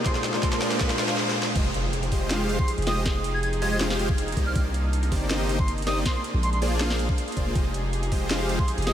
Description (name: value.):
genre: future bass.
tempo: 160 BPM.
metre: 4/4.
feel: half-time.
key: F dorian.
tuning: A4 = 441 Hz.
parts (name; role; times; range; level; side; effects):
bell-like tine electric piano; accompaniment; 0.0-1.6 s; Bb2 to C5; -32 LUFS; left 2 dB; lush chorus, sidechain pumping, analog delay.
warm studio string section; sustained chords; 0.0-8.9 s; Bb2 to C5; -34 LUFS; right 1 dB; sidechain pumping.
supersaw chords; riff; 0.0-8.9 s; Ab3 to F5; -29 LUFS; equal; sidechain pumping, analog delay.
riser and impact; sound effects; 0.0-3.1 s; none; -36 LUFS; equal; none.
bright reedy silver concert flute; melody; 0.1-8.9 s; C6 to Ab6; -34 LUFS; right 1 dB; sidechain pumping, analog delay.
electronic kick drum; drums; 0.1-8.7 s; none; -26 LUFS; equal; overdrive.
trap drum kit; drums; 0.1-8.9 s; crash cymbal, hi-hat, snare drum; -30 LUFS; equal; high-pass filter on snare, high-pass filter on hats, high-pass filter on cymbals.
long sustained 808-style bass; bass; 1.6-8.9 s; F1 to C2; -27 LUFS; equal; sidechain pumping.
room: moderate huge ambient reverb, RT60 6.9 s.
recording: dreamy mix soaked in reverb.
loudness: -22 LUFS.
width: side -10 dB against mid.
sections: 0.0-1.6 A section; 1.6-8.9 B section.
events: build-up 0.0-1.6; drum fill 0.0-1.2, 1.2-1.6; riser 0.0-1.2; drop 1.6-8.9; impact 1.6-3.1.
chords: 0.1 Bb9; 1.6 Fm9; 4.4 Cm9; 6.1 Bb9; 7.6 Fm9.